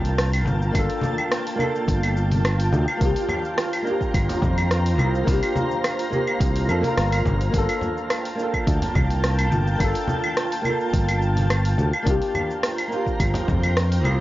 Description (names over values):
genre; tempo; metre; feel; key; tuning
sunset chillout; 106 BPM; 4/4; swing 53% on 16ths; G minor; A4 = 442 Hz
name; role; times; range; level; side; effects
flamenco guitar; accompaniment; 0.0-14.2 s; Bb3 to Bb4; -27 LUFS; left 1 dB; auto-pan, ping-pong delay
shimmering ambient pad; sustained chords; 0.0-14.2 s; Bb3 to Bb5; -27 LUFS; right 1 dB; chorus, built-in reverb
modern bright fingered electric bass; bass; 0.0-14.2 s; G1 to F2; -22 LUFS; equal; none
deep house drum kit; drums; 0.0-14.2 s; cabasa, claves, hi-hat, rim click; -27 LUFS; equal; none
congas; percussion; 0.5-14.2 s; none; -29 LUFS; left 1 dB; none
electronic kick drum; drums; 0.7-13.6 s; none; -25 LUFS; equal; none
room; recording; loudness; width
light reverb, digital ambience; worn, warbling old tape, cassette tape, warbly pitch drift, nothing above 7.4 kHz; -20 LUFS; side -16 dB against mid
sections
0.0-14.2 A section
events
none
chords
0.0 Gm9; 12.1 C7sus4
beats
0.18 | 0.75 1.31 1.88 2.44 | 3.01 3.58 4.14 4.71 | 5.28 5.84 6.41 6.97 | 7.54 8.11 8.67 9.24 | 9.80 10.37 10.94 11.50 | 12.07 12.63 13.20 13.77